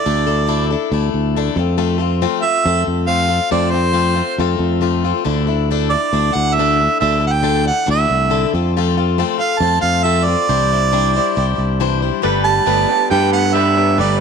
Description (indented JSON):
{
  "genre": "folk rock and heartland rock",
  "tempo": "138 BPM",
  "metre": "4/4",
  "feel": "straight",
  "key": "unclear",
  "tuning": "A4 = 440 Hz",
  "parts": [
    { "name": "warm harmonica", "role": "melody", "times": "0.0-14.2 s", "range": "C5 to A5", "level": "-17 LUFS", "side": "right 5 dB", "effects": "none" },
    { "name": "picked plugged-in swing-style acoustic guitar", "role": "accompaniment", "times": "0.0-14.2 s", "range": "C3 to C5", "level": "-20 LUFS", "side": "left 11 dB", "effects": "none" },
    { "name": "modern bright fingered electric bass", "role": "bass", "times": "0.1-14.2 s", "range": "G1 to G2", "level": "-18 LUFS", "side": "right 1 dB", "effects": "none" },
    { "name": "bright concert grand piano", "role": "accompaniment", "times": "12.2-14.2 s", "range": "G4 to B4", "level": "-25 LUFS", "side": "right 9 dB", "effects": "none" },
    { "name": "electric guitar through a small old amp", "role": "riff", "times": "12.2-14.2 s", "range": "G3 to A4", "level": "-21 LUFS", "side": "right 12 dB", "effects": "wide subtle chorus" }
  ],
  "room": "moderate echo chamber reverb, RT60 2.0 s",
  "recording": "1960s-style stereo with parts hard left and right",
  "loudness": "-14 LUFS",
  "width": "side -6 dB against mid",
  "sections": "0.0-12.2 A section; 12.2-14.2 B section",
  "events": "none",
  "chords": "0.0 Dsus2; 1.6 F; 5.3 Dsus2; 8.5 F; 10.5 Cadd9; 12.2 Gadd9",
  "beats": "| 0.06 0.49 0.93 1.36 | 1.79 2.23 2.66 3.10 | 3.53 3.96 4.40 4.83 | 5.27 5.70 6.14 6.57 | 7.01 7.44 7.88 8.31 | 8.75 9.18 9.62 10.06 | 10.49 10.93 11.37 11.80 | 12.24 12.68 13.11 13.55 | 13.98"
}